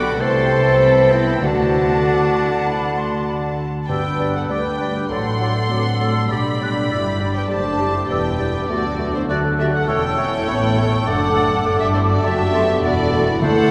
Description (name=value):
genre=quick classical-period movement for symphony orchestra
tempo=100 BPM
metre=4/4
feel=straight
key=unclear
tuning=A4 = 440 Hz
part: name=rich studio violin section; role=melody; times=0.0-13.7 s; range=C5 to D6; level=-29 LUFS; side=equal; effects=none
part: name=clear oboe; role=second line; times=0.0-13.7 s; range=C4 to D5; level=-31 LUFS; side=equal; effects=none
part: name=dark studio violin section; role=second line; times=0.0-13.7 s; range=E4 to B5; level=-29 LUFS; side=equal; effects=none
part: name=hollow concert flute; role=second line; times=0.0-13.7 s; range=A5 to F#6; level=-30 LUFS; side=equal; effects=none
part: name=mellow clarinet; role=second line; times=0.0-13.7 s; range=E4 to C5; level=-30 LUFS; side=equal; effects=none
part: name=dark studio viola section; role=accompaniment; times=0.0-13.7 s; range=E3 to F#4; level=-29 LUFS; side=equal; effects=none
part: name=mellow bassoon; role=accompaniment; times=0.0-13.7 s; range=D3 to A3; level=-30 LUFS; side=equal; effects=none
part: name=mellow French horn section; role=sustained chords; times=0.0-13.7 s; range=F#3 to C5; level=-26 LUFS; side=equal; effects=none
part: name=dark studio double bass section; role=bass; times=0.0-13.7 s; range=E1 to A2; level=-27 LUFS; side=equal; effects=none
part: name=warm studio cello section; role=bass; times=0.0-13.7 s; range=D2 to A3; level=-28 LUFS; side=equal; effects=none
part: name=timpani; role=percussion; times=1.4-4.8, 13.4-13.7 s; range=G2 to D3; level=-30 LUFS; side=equal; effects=none
part: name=warm trumpet section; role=stabs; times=3.9-13.7 s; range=G4 to B4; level=-30 LUFS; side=equal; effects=none
room=wet cathedral reverb, RT60 4.9 s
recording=recorded in a church or concert hall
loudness=-18 LUFS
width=mono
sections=0.0-3.9 A section; 3.9-13.7 B section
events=none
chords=0.2 Am7/C; 1.4 D; 3.9 G; 5.1 D7/A; 6.3 G; 8.7 D; 9.9 A7/E; 11.1 D/F#